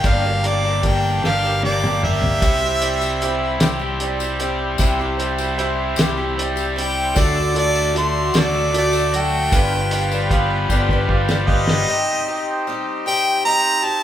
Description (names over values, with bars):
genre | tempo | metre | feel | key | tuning
folk rock and heartland rock | 51 BPM (dotted quarters) | 6/8 | straight | unclear | A4 = 440 Hz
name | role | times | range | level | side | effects
clear harmonica | melody | 0.0-14.0 s | D5 to C6 | -20 LUFS | equal | none
picked twelve-string acoustic guitar | accompaniment | 0.0-14.0 s | G2 to B4 | -25 LUFS | left 1 dB | none
warm concert grand piano | accompaniment | 0.0-11.9 s | F#3 to D6 | -29 LUFS | right 5 dB | none
accordion | sustained chords | 0.0-14.0 s | F#3 to F5 | -29 LUFS | right 1 dB | none
raw garage guitar | riff | 0.0-11.9 s | G2 to G4 | -25 LUFS | equal | overdrive
fingered electric bass | bass | 0.0-11.8 s | G1 to D2 | -24 LUFS | equal | none
cloth-damped thuddy drum kit | drums | 0.0-11.9 s | hi-hat, kick drum, snare drum, toms | -21 LUFS | equal | none
tambourine | percussion | 2.4-11.5 s | none | -34 LUFS | left 6 dB | none
room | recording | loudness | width
moderate large studio reverb, RT60 1.1 s | band playing live in one room | -16 LUFS | side -11 dB against mid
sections
0.0-11.9 A section; 11.9-14.0 B section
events
harmonica solo 0.0-11.9; drum fill 1.2-2.4, 10.7-11.9; grand piano fill 10.7-11.9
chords
0.0 Gm; 2.4 C; 7.2 D; 9.5 G7; 11.9 Cm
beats
| 0.04 1.23 | 2.42 3.61 | 4.79 5.98 | 7.16 8.34 | 9.52 10.70 | 11.87 13.05